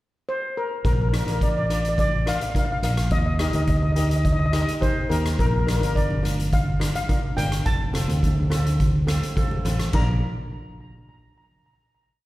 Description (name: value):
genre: calypso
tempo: 106 BPM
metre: 4/4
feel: straight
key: Bb major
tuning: A4 = 445 Hz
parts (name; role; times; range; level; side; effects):
- steel pan; melody; 0.3-10.2 s; Bb4 to Bb5; -28 LUFS; left 1 dB; slapback echo, tape echo
- fingered electric bass; bass; 0.8-10.2 s; F1 to Eb2; -23 LUFS; equal; none
- street-band drum kit; drums; 0.8-10.1 s; crash cymbal, hi-hat, kick drum, rim click; -24 LUFS; equal; none
- steel pan; accompaniment; 1.1-10.2 s; C4 to Bb4; -32 LUFS; left 1 dB; none
- congas; percussion; 5.7-10.2 s; none; -33 LUFS; right 1 dB; none
room: little or no reverb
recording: live gig heard through the venue's PA, recital hall reverb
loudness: -20 LUFS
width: side -17 dB against mid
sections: 0.0-0.8 pickup bar; 0.8-9.9 verse; 9.9-12.2 final chord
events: none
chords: 0.0 N.C.; 0.8 Bbmaj7; 3.1 Ebmaj7; 5.4 Bb; 7.7 F; 9.9 Bb